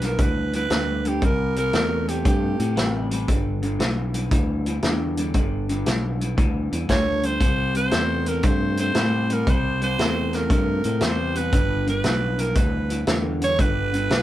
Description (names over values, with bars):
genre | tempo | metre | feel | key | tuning
electric blues shuffle | 116 BPM | 4/4 | swing 67% on 8ths | G major | A4 = 440 Hz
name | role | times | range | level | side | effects
growling tenor saxophone | melody | 0.0-3.1, 6.9-14.2 s | G4 to C#5 | -26 LUFS | right 2 dB | none
electric guitar through a small old amp | riff | 0.0-14.2 s | G2 to A3 | -27 LUFS | left 2 dB | none
fingered electric bass | bass | 0.0-14.2 s | G1 to A2 | -25 LUFS | equal | none
vintage drum kit | drums | 0.0-14.2 s | hi-hat, kick drum, snare drum | -24 LUFS | equal | none
room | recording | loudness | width
moderate studio ambience, RT60 0.5 s | band playing live in one room | -20 LUFS | side -13 dB against mid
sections
0.0-14.2 A section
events
none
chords
0.0 G6; 1.2 C6; 3.3 G6; 7.4 C6; 11.5 G6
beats
0.19 0.70 | 1.22 1.74 2.25 2.77 | 3.28 3.80 4.32 4.83 | 5.35 5.86 6.38 6.89 | 7.41 7.92 8.44 8.95 | 9.47 9.98 10.50 11.02 | 11.53 12.05 12.56 13.08 | 13.60 14.11